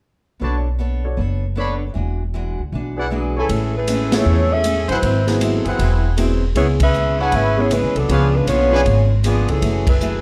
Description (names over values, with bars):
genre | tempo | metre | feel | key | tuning
jazz, big band swing | 156 BPM | 4/4 | swing 64% on 8ths | A major | A4 = 439 Hz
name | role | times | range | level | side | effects
clear concert grand piano | accompaniment | 0.4-8.8 s | E#3 to C#5 | -26 LUFS | equal | none
picked steel-string acoustic guitar | accompaniment | 0.4-10.2 s | G#2 to C#5 | -29 LUFS | equal | none
warm trumpet section | stabs | 0.4-8.8 s | B#3 to B5 | -27 LUFS | equal | none
upright bass | bass | 0.4-10.2 s | E1 to E2 | -22 LUFS | equal | none
mellow saxophone section | melody | 3.1-10.2 s | E3 to F#5 | -22 LUFS | equal | none
swinging big-band drum kit | drums | 3.5-10.1 s | hi-hat, kick drum, ride cymbal, snare drum | -27 LUFS | equal | none
room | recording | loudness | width
light reverb | dark, warm production | -18 LUFS | mono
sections
0.4-3.5 A section; 3.5-10.2 B section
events
band accent 4.1, 6.7, 9.8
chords
0.4 Bm9; 2.0 E9; 3.5 Amaj7; 5.0 G#7alt; 6.6 C#m7; 8.1 C#7b9; 9.6 F#m9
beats
| 0.42 0.80 1.19 1.57 | 1.95 2.34 2.72 3.11 | 3.49 3.87 4.26 4.64 | 5.02 5.41 5.79 6.17 | 6.56 6.94 7.32 7.71 | 8.09 8.47 8.86 9.24 | 9.62 10.01